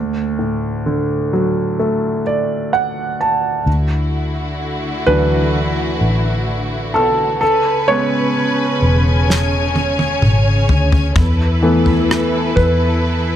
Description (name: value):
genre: pop ballad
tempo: 64 BPM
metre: 4/4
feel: straight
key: unclear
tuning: A4 = 442 Hz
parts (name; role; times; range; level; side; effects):
- warm concert grand piano; accompaniment; 0.0-13.4 s; D2 to A5; -17 LUFS; right 1 dB; none
- warm studio string section; sustained chords; 3.7-13.4 s; C#3 to G#5; -20 LUFS; left 1 dB; none
- vintage muted fingered electric bass; bass; 3.7-13.4 s; E1 to E2; -17 LUFS; equal; none
- damped 70s drum kit; drums; 9.3-12.8 s; kick drum, rim click, snare drum, toms; -18 LUFS; equal; none
room: studio ambience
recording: none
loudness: -14 LUFS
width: side -10 dB against mid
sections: 0.0-3.7 A section; 3.7-13.4 B section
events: grand piano fill 1.8-3.7; grand piano solo 3.7-13.4; drum fill 9.3-11.2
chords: 0.0 D; 3.7 Dadd9; 7.4 E6; 11.2 Esus4